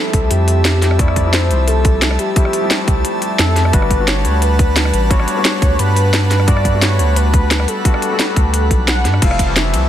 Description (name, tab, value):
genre	liquid drum and bass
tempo	175 BPM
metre	4/4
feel	straight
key	unclear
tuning	A4 = 437 Hz
part	warm velvety synth lead	melody	0.0-9.9 s	G4 to F#5	-21 LUFS	equal	chorus, digital delay
part	warm concert grand piano	accompaniment	0.0-9.9 s	E3 to F#4	-22 LUFS	left 4 dB	digital delay
part	airy breathy pad	sustained chords	0.0-9.9 s	G3 to E6	-24 LUFS	right 3 dB	chorus, sidechain pumping
part	saturated sub bass	bass	0.1-9.9 s	F1 to G2	-15 LUFS	equal	none
part	drum and bass drum kit	drums	0.1-9.8 s	crash cymbal, hi-hat, ride cymbal, rim click, snare drum	-18 LUFS	equal	none
part	electronic kick drum	drums	0.1-9.5 s	none	-14 LUFS	equal	none
room	light reverb, digital ambience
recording	dense, heavily limited modern master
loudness	-12 LUFS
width	side -11 dB against mid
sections	0.0-9.9 A section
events	none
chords	0.0 Fmaj9; 3.7 Gmaj9; 9.2 Fmaj9